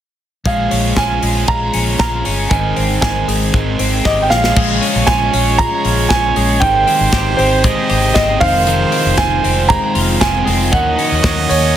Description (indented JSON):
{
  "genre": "jangly indie pop",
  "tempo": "117 BPM",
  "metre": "4/4",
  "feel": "straight",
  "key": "unclear",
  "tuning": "A4 = 440 Hz",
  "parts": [
    { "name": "clear upright piano", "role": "melody", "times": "0.5-11.8 s", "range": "C5 to Bb5", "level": "-17 LUFS", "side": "right 3 dB", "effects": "tape echo" },
    { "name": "biting overdriven guitar", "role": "accompaniment", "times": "0.5-11.8 s", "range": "F2 to Ab4", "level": "-21 LUFS", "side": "right 5 dB", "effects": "none" },
    { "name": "twelve-string electric guitar", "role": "arpeggios", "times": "0.5-11.8 s", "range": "Eb3 to G4", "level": "-20 LUFS", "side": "left 6 dB", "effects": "phaser" },
    { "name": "vintage muted fingered electric bass", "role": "bass", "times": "0.5-11.8 s", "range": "F1 to Eb2", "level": "-19 LUFS", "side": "equal", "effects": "none" },
    { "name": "modern studio drum kit", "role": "drums", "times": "0.5-11.6 s", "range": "crash cymbal, hi-hat, kick drum, snare drum", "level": "-18 LUFS", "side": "left 1 dB", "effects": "none" },
    { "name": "bright trumpet", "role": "second line", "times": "4.6-11.8 s", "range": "C5 to Eb5", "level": "-22 LUFS", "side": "right 6 dB", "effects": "none" }
  ],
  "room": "light reverb, studio reverb",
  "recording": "dense, heavily limited modern master",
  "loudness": "-12 LUFS",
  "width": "side -10 dB against mid",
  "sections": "0.5-4.6 A section; 4.6-11.8 B section",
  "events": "drum fill 4.0-4.6",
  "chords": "0.5 Bbm7; 2.5 Abmaj7; 4.3 Bbm7; 6.6 Abmaj7; 8.4 Fm7; 10.7 Ebm7",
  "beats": "| 0.46 0.97 1.48 2.00 | 2.51 3.02 3.54 4.05 | 4.56 5.08 5.59 6.10 | 6.62 7.13 7.64 8.15 | 8.67 9.18 9.70 10.21 | 10.73 11.24 11.76"
}